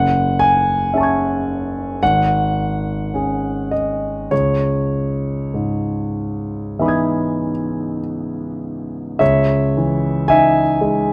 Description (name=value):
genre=classical, impressionist solo piano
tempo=48-59 BPM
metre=4/4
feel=rubato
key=C# minor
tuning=A4 = 438 Hz
part: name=warm concert grand piano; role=solo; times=0.0-11.1 s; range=F#1 to G#6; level=-18 LUFS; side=equal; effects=none
room=moderate recital hall reverb, RT60 1.5 s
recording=close, detailed microphones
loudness=-19 LUFS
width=mono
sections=0.0-9.2 A section; 9.2-11.1 A section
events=none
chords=0.0 F#m9; 2.0 G#7sus4; 4.3 C#m9; 9.2 C#madd9